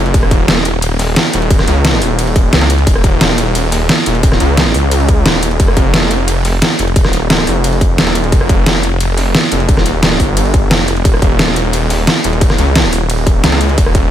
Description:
dark technical drum and bass; 176 BPM; 4/4; straight; A4 = 441 Hz
wide detuned saw bass; bass; 0.0-14.1 s; Eb1 to Db2; -13 LUFS; equal; chorus, tube saturation, sidechain pumping
breakbeat sampler-style drum kit; drums; 0.1-14.0 s; hi-hat, ride cymbal, snare drum; -24 LUFS; equal
dubstep drum kit; drums; 0.1-14.0 s; hi-hat, ride cymbal, rim click, snare drum; -14 LUFS; equal; overdrive
electronic kick drum; drums; 0.1-14.0 s; -12 LUFS; equal; overdrive
little or no reverb; -9 LUFS; side -10 dB against mid
0.0-14.1 A section
| 0.14 0.48 0.82 1.16 | 1.50 1.85 2.19 2.53 | 2.87 3.21 3.55 3.89 | 4.23 4.57 4.91 5.25 | 5.60 5.94 6.28 6.62 | 6.96 7.30 7.64 7.98 | 8.32 8.66 9.01 9.35 | 9.69 10.03 10.37 10.71 | 11.05 11.39 11.73 12.07 | 12.41 12.76 13.10 13.44 | 13.78

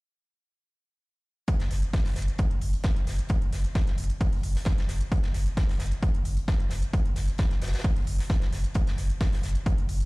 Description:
driving peak-time techno; 132 BPM; 4/4; straight; A4 = 440 Hz
electronic hi-hat; drums; 1.5-10.1 s; -45 LUFS; right 2 dB
electronic kick drum; drums; 1.5-9.8 s; -26 LUFS; equal
huge arena drum kit; drums; 1.5-10.1 s; hi-hat, snare drum; -42 LUFS; left 1 dB; high-pass filter on hats, high-pass filter on snare, high-pass filter on room
warm sub bass; bass; 1.6-10.0 s; F#1; -29 LUFS; equal; tube saturation, sidechain pumping, low-pass filter
little or no reverb; played on a big sound system in a bare room, stone room reverb; -24 LUFS; side -24 dB against mid
1.5-10.1 A section
| 1.48 1.93 2.39 2.84 | 3.30 3.75 4.21 4.66 | 5.12 5.57 6.03 6.48 | 6.93 7.39 7.84 8.30 | 8.75 9.21 9.66

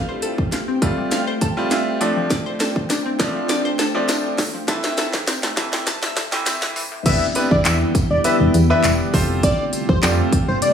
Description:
dance-pop; 101 BPM; 4/4; straight; A4 = 440 Hz
bright grand piano; accompaniment; 0.0-10.7 s; E3 to A5; -24 LUFS; right 1 dB; sidechain pumping
glassy FM pad; sustained chords; 0.0-10.7 s; F2 to G5; -25 LUFS; equal; ensemble chorus, built-in reverb, phaser, sidechain pumping
glassy wavetable pluck; arpeggios; 0.1-7.0 s; A2 to A5; -27 LUFS; left 3 dB; chorus, sidechain pumping, tape echo
house drum kit; drums; 0.2-10.7 s; crash cymbal, handclaps, hi-hat, kick drum, snare drum; -21 LUFS; equal
tambourine; percussion; 2.6-10.7 s; -33 LUFS; left 6 dB
wide unison lead; melody; 7.1-10.7 s; C5 to E5; -21 LUFS; left 2 dB; sidechain pumping
solid FM bass; bass; 7.1-10.6 s; E1 to F2; -19 LUFS; equal; sidechain pumping
light reverb; high-pass filter, studio reverb; -17 LUFS; side -8 dB against mid
0.0-7.1 A section; 7.1-10.7 B section
build-up 0.0-7.1; drum fill 0.0-7.1; filter sweep 0.0-7.1; grand piano fill 1.1-2.3, 5.3-7.1; drop 7.1-10.7
0.0 Fadd9; 2.0 Dm7/F; 4.7 Am; 7.1 Em7; 9.1 Fadd9
0.52 1.12 1.71 | 2.31 2.90 3.49 4.09 | 4.68 5.28 5.87 6.46 | 7.06 7.65 8.24 8.84 | 9.43 10.03 10.62

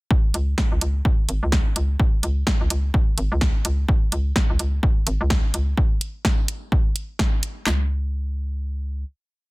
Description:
minimal techno; 127 BPM; 4/4; swing 60% on 16ths; A4 = 441 Hz
punchy analog drum machine; drums; 0.1-7.8 s; handclaps, kick drum, snare drum; -20 LUFS; equal
hollow knocking FM bass; bass; 0.3-9.0 s; G#1 to C#2; -22 LUFS; equal; tube saturation, sidechain pumping
punchy analog drum machine; drums; 0.3-7.5 s; hi-hat, snare drum; -26 LUFS; equal
little or no reverb; dense, heavily limited modern master; -19 LUFS; side -23 dB against mid
0.1-7.7 groove; 7.7-9.5 final note
| 0.11 0.58 1.05 1.52 | 2.00 2.47 2.94 3.41 | 3.89 4.36 4.83 5.30 | 5.78 6.25 6.72 7.19 | 7.67 8.14 8.61

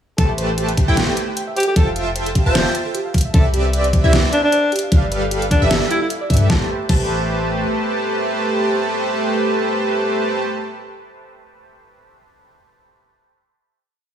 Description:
future bass; 152 BPM; 4/4; swing 55% on 16ths, half-time; A minor; A4 = 440 Hz
breathy alto saxophone; melody; 0.2-6.1 s; D4 to C5; -21 LUFS; equal; sidechain pumping, digital delay
soft round pluck; arpeggios; 0.2-7.0 s; G4 to G5; -28 LUFS; right 2 dB; chorus, cassette tape, sidechain pumping, dub echo
wide unison pluck; arpeggios; 0.2-11.1 s; E5 to A5; -30 LUFS; equal; sidechain pumping, dub echo
soft supersaw; riff; 0.2-10.4 s; G3 to A5; -20 LUFS; right 1 dB; cassette tape, sidechain pumping, dub echo
warm 808-style bass; bass; 0.2-7.6 s; F1 to G2; -20 LUFS; equal; sidechain pumping
electronic kick drum; drums; 0.2-7.0 s; -15 LUFS; equal; overdrive
pop drum kit; drums; 0.2-7.0 s; crash cymbal, hi-hat, snare drum; -22 LUFS; equal; overdrive
light reverb, digital ambience; small room ambience; -15 LUFS; side -9 dB against mid
0.2-6.5 drop; 6.5-9.7 final chord
drop 0.2-6.5
0.2 Am7; 1.8 Fmaj9; 3.3 Cmaj9; 4.7 G9; 6.5 Am7
| 0.18 0.58 0.97 1.37 | 1.76 2.16 2.55 2.95 | 3.34 3.74 4.13 4.53 | 4.92 5.31 5.71 6.10 | 6.50 6.89 7.29 7.68 | 8.08 8.47 8.87 9.26

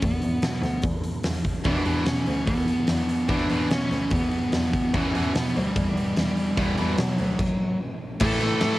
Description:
hard rock; 147 BPM; 4/4; straight; E dorian; A4 = 440 Hz
smooth overdriven lead guitar; melody; 0.0-8.8 s; G3 to A4; -26 LUFS; equal; cassette tape
warm cello; bass; 0.0-8.8 s; D2 to B2; -28 LUFS; equal
huge arena drum kit; drums; 0.0-8.7 s; crash cymbal, hi-hat, kick drum, snare drum; -27 LUFS; equal; cassette tape
high-gain distorted guitar; riff; 1.6-8.8 s; E2 to A3; -33 LUFS; equal; distortion, cassette tape
overdriven electric guitar; riff; 1.6-8.8 s; E2 to A3; -30 LUFS; left 6 dB; cassette tape
tight distorted guitar; riff; 1.7-8.8 s; E2 to A3; -31 LUFS; right 6 dB; distortion, cassette tape
small room ambience; home recording on cassette; -22 LUFS; side -17 dB against mid
0.0-8.2 A section
stop 7.4-8.2
0.0 Em; 8.2 A5
| 0.04 0.45 0.85 1.26 | 1.67 2.08 2.49 2.90 | 3.30 3.71 4.12 4.53 | 4.94 5.35 5.76 6.17 | 6.58 6.99 7.40 7.81 | 8.22 8.63

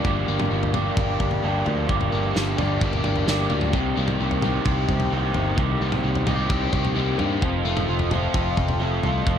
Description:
indie rock; 130 BPM; 4/4; straight; G minor; A4 = 440 Hz
crunchy overdriven guitar; riff; 0.0-9.4 s; F3 to A4; -26 LUFS; right 4 dB; wide subtle chorus, analog delay
overdriven electric guitar; riff; 0.0-9.4 s; F2 to G4; -27 LUFS; left 8 dB; phaser, analog delay
picked electric bass; bass; 0.0-9.4 s; F1 to G2; -25 LUFS; right 1 dB
loose indie drum kit; drums; 0.0-9.4 s; kick drum, snare drum, toms; -27 LUFS; equal
small room ambience; echo-heavy mix; -20 LUFS; side -8 dB against mid
0.0-9.4 A section
0.0 Gm7; 3.7 Cm7; 7.4 F
| 0.05 0.51 0.97 1.43 | 1.89 2.35 2.81 3.27 | 3.74 4.20 4.66 5.12 | 5.58 6.04 6.50 6.96 | 7.42 7.88 8.35 8.81 | 9.27

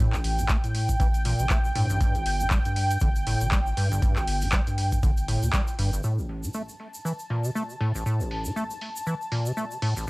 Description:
acid house; 119 BPM; 4/4; swing 57% on 16ths; A4 = 440 Hz
lush unison pad; sustained chords; 0.1-10.1 s; G5 to A5; -32 LUFS; equal; chorus, sidechain pumping
acid bass, square; riff; 0.0-10.1 s; G1 to A3; -28 LUFS; equal; overdrive, analog chorus, sidechain pumping, analog delay
saturated sub bass; bass; 0.0-6.0 s; G1 to A2; -28 LUFS; equal; sidechain pumping
booming analog drum machine; drums; 0.1-9.9 s; handclaps, hi-hat; -32 LUFS; equal; low-pass filter on hats, studio reverb, low-pass filter on snare
egg shaker; percussion; 0.1-10.1 s; -42 LUFS; right 1 dB
electronic kick drum; drums; 0.5-5.7 s; -24 LUFS; equal; studio reverb
little or no reverb; dry, gritty hardware recording, cassette tape; -23 LUFS; side -22 dB against mid
0.0-6.0 A section; 6.0-10.1 B section
band accent 5.5
0.0 A7(no3); 2.0 N.C.
0.49 1.00 1.50 | 2.01 2.51 3.02 3.52 | 4.02 4.53 5.03 5.54 | 6.04 6.54 7.05 7.55 | 8.06 8.56 9.07 9.57 | 10.07

